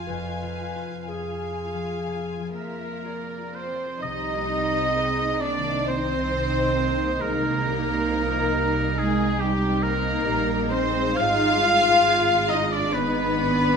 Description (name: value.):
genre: cinematic, emotional film score for orchestra.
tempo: 57-72 BPM.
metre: 4/4.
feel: rubato.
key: C minor from 4.0 s.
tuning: A4 = 439 Hz.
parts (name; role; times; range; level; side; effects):
dark studio violin section; melody; 0.0-13.8 s; G4 to Ab5; -28 LUFS; left 4 dB; none.
mellow clarinet; second line; 0.0-3.0 s; Ab4 to B4; -34 LUFS; equal; none.
rich studio violin section; second line; 0.0-13.8 s; G4 to F5; -30 LUFS; left 2 dB; none.
dark studio viola section; accompaniment; 0.0-13.8 s; F3 to F4; -30 LUFS; right 3 dB; none.
concert harp; arpeggios; 0.0-13.8 s; F2 to Bb4; -33 LUFS; left 9 dB; none.
warm studio cello section; bass; 0.0-13.8 s; F2 to F4; -29 LUFS; right 3 dB; none.
dark studio double bass section; bass; 0.1-13.8 s; F1 to C2; -30 LUFS; right 4 dB; none.
clear oboe; second line; 2.6-13.8 s; G4 to F5; -27 LUFS; right 1 dB; none.
room: wet recital hall reverb, RT60 1.4 s.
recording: none.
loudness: -21 LUFS.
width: side -6 dB against mid.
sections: 0.0-4.0 A section; 4.0-13.8 A section.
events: none.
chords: 0.0 Fm; 4.0 Cm7; 11.2 Abm.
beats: | 0.07 1.08 2.06 3.04 | 4.03 4.96 5.88 6.77 | 7.66 8.55 9.41 10.25 | 11.17 12.06 12.95.